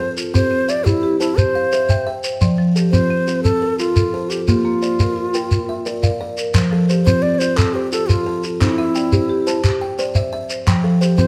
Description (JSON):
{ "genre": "southern african traditional, mbira-style interlocking cycle", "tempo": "116 BPM (dotted quarters)", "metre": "12/8", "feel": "straight", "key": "F major", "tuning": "A4 = 440 Hz", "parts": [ { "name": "mellow low Native American-style wooden flute", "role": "melody", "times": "0.0-11.3 s", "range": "E4 to D5", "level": "-22 LUFS", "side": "equal", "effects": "none" }, { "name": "buzzing kalimba", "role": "arpeggios", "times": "0.0-11.3 s", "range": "F3 to G5", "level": "-23 LUFS", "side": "equal", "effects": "none" }, { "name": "marimba with soft mallets", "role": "arpeggios", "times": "0.0-11.3 s", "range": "F3 to A5", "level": "-25 LUFS", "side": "equal", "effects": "none" }, { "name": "shekere", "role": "percussion", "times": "0.2-11.3 s", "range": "none", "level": "-21 LUFS", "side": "equal", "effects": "none" }, { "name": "group handclap", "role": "percussion", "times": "6.6-10.8 s", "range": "none", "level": "-31 LUFS", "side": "equal", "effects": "none" } ], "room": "moderate recital hall reverb, RT60 1.5 s", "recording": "none", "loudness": "-18 LUFS", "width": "mono", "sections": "0.0-6.5 A section; 6.5-11.3 B section", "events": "none", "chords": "0.3 C; 2.4 F; 4.5 Bb; 6.5 F; 8.6 C; 10.7 F" }